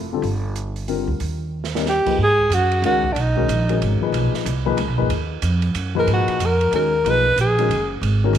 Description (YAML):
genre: modal jazz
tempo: 185 BPM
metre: 3/4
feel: swing 62% on 8ths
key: G# dorian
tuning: A4 = 440 Hz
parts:
  - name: upright bass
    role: bass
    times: 0.0-8.4 s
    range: F1 to G#2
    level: -22 LUFS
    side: right 2 dB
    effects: none
  - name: dark concert grand piano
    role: accompaniment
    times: 0.1-8.3 s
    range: A#2 to Cb5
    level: -24 LUFS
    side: left 8 dB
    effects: none
  - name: open jazz drum kit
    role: drums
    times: 0.2-8.4 s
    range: crash cymbal, hi-hat, kick drum, ride cymbal, snare drum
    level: -31 LUFS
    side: right 9 dB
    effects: none
  - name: clear alto saxophone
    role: melody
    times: 1.9-3.8, 6.0-7.9 s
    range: D4 to B4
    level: -19 LUFS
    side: right 1 dB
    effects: none
room: moderate echo chamber reverb, RT60 1.8 s, small room ambience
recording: 1960s-style stereo with parts hard left and right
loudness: -17 LUFS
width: side -10 dB against mid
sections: 0.0-2.2 A section; 2.2-8.4 B section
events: drum fill 1.5-1.9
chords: 0.0 Gm11; 1.2 Eb(b13); 2.2 G#m11